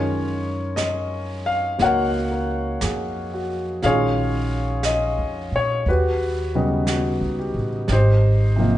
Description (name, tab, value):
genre	jazz ballad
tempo	59 BPM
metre	4/4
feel	swing 68% on 8ths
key	unclear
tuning	A4 = 442 Hz
part	warm concert grand piano	accompaniment	0.0-8.8 s	C3 to Gb5	-22 LUFS	left 1 dB	none
part	upright bass	bass	0.0-8.8 s	Ab1 to Bb2	-23 LUFS	equal	none
part	jazz brush drum kit	drums	0.8-8.8 s	brushed snare drum, hi-hat, snare drum	-33 LUFS	right 3 dB	none
room	moderate recital hall reverb, RT60 1.7 s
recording	recorded in a church or concert hall, nothing above 10.5 kHz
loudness	-19 LUFS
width	side -13 dB against mid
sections	0.0-8.8 A section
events	none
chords	0.0 Gbmaj13; 3.8 Bbm7; 5.9 Eb7alt; 7.9 Abmaj9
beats	0.77 1.79 2.81 | 3.83 4.84 5.85 6.87 | 7.88